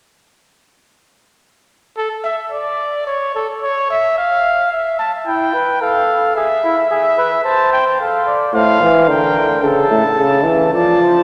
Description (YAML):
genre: classical, imitative canzona for brass ensemble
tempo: 110 BPM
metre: 3/4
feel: straight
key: D minor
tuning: A4 = 440 Hz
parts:
  - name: warm trumpet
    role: melody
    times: 2.0-11.2 s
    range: A4 to A5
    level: -19 LUFS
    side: equal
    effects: none
  - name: mellow flugelhorn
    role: second line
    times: 5.3-11.2 s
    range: E4 to D5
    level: -20 LUFS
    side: equal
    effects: none
  - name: mellow euphonium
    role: accompaniment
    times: 8.5-11.2 s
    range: A2 to F3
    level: -15 LUFS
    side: equal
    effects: none
room: wet church reverb, RT60 3.6 s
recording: none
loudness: -16 LUFS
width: mono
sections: 1.4-11.2 A section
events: none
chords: 1.4 N.C.; 5.8 F/A; 6.4 E; 7.5 Am/C; 8.0 Dm/A; 9.1 Gm/D; 9.6 A; 10.7 Dm/F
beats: | 1.42 1.97 2.52 | 3.07 3.62 4.17 | 4.72 5.27 5.82 | 6.36 6.91 7.46 | 8.00 8.55 9.09 | 9.64 10.18 10.73